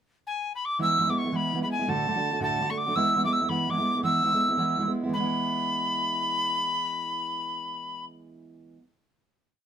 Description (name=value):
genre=celtic folk, Celtic jig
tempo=111 BPM (dotted quarters)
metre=6/8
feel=straight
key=E mixolydian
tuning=A4 = 440 Hz
part: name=mid whistle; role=melody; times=0.3-8.0 s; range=G#5 to E6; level=-26 LUFS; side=equal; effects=none
part: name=fingerpicked steel-string acoustic guitar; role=accompaniment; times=0.8-8.8 s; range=D2 to F#4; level=-29 LUFS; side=right 2 dB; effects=none
room=light reverb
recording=minimal, uncompressed stereo recording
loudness=-24 LUFS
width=side -8 dB against mid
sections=0.0-0.8 pickup bar; 0.8-5.1 A section; 5.1-7.3 final chord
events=none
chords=0.0 N.C.; 0.8 E; 1.9 D; 3.0 E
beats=0.25 | 0.79 1.33 | 1.88 2.42 | 2.96 3.50 | 4.04 4.58 | 5.12 5.66 | 6.20 6.74